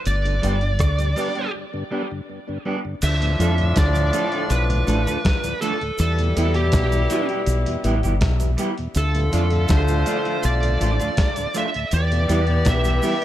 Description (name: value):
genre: roots reggae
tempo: 81 BPM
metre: 4/4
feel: straight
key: D dorian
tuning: A4 = 435 Hz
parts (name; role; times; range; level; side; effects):
- high-gain lead guitar; melody; 0.1-13.2 s; G4 to E5; -26 LUFS; right 2 dB; distortion, tape echo
- fingered electric bass; bass; 0.1-13.0 s; G1 to F2; -20 LUFS; equal; none
- dusty soul sampler-style drum kit; drums; 0.1-13.2 s; crash cymbal, hi-hat, kick drum, rim click, snare drum; -24 LUFS; equal; none
- cabasa; percussion; 0.1-13.2 s; none; -38 LUFS; right 5 dB; none
- mellow tonewheel organ; accompaniment; 0.3-13.1 s; D2 to F4; -30 LUFS; left 1 dB; slow rotary speaker, tape echo
- electric guitar at the edge of break-up; accompaniment; 0.4-13.2 s; F3 to A4; -29 LUFS; right 3 dB; warbly pitch drift, tape echo
- warm horn section; second line; 3.0-13.2 s; A2 to G4; -27 LUFS; left 3 dB; tape echo
room: little or no reverb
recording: none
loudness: -18 LUFS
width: side -12 dB against mid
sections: 0.0-3.0 A section; 3.0-13.2 B section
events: break 1.5-3.0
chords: 0.1 G; 3.0 Dm; 6.0 Em; 9.0 Dm; 11.9 Em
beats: | 0.06 0.81 1.55 2.29 | 3.03 3.77 4.51 5.25 | 5.99 6.74 7.48 8.22 | 8.96 9.70 10.44 11.18 | 11.92 12.66